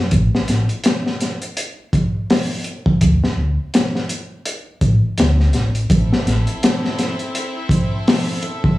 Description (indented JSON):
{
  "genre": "trip hop",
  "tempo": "83 BPM",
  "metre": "4/4",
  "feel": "swing 57% on 16ths",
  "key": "A minor",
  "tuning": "A4 = 439 Hz",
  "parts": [
    { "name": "upright bass", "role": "bass", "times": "0.0-6.4 s", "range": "A1 to D2", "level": "-17 LUFS", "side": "equal", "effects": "transformer saturation" },
    { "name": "crunchy breakbeat drum kit", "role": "drums", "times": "0.1-8.8 s", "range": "hi-hat, kick drum, snare drum", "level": "-17 LUFS", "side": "equal", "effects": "none" },
    { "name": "clear studio violin section", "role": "sustained chords", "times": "5.9-8.8 s", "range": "C4 to E5", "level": "-26 LUFS", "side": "left 1 dB", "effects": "none" }
  ],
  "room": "little or no reverb",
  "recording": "dry, gritty hardware recording, cassette tape, studio reverb",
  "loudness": "-16 LUFS",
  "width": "side -17 dB against mid",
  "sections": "0.0-5.9 A section; 5.9-8.8 B section",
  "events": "none",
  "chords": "0.1 N.C.; 3.0 D5; 5.9 Am"
}